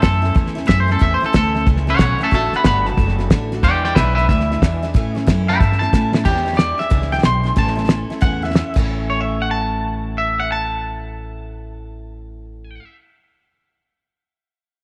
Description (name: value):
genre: rockabilly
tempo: 183 BPM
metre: 4/4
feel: swing 64% on 8ths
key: A major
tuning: A4 = 440 Hz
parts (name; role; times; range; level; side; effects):
- twangy electric guitar; melody; 0.0-13.0 s; G4 to C6; -23 LUFS; equal; spring reverb, tape echo
- picked steel-string acoustic guitar; accompaniment; 0.0-12.8 s; E2 to F#4; -29 LUFS; equal; none
- upright bass; bass; 0.0-12.8 s; F#1 to A2; -23 LUFS; equal; none
- cloth-damped thuddy drum kit; drums; 0.0-8.8 s; crash cymbal, hi-hat, kick drum, snare drum; -20 LUFS; equal; none
room: small room ambience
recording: none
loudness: -17 LUFS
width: mono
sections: 0.0-6.3 A section; 6.3-8.9 B section; 8.9-11.5 C section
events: drum fill 5.9-6.3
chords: 0.0 A; 2.3 D; 3.6 E7; 4.9 A; 6.3 E7; 7.6 A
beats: 0.03 0.36 0.69 | 1.01 1.34 1.67 2.00 | 2.32 2.65 2.98 3.31 | 3.63 3.96 4.29 4.62 | 4.94 5.27 5.60 5.93 | 6.25 6.58 6.91 7.24 | 7.57 7.89 8.22 8.55 | 8.88 9.21 9.53 9.86 | 10.19 10.52 10.85 11.18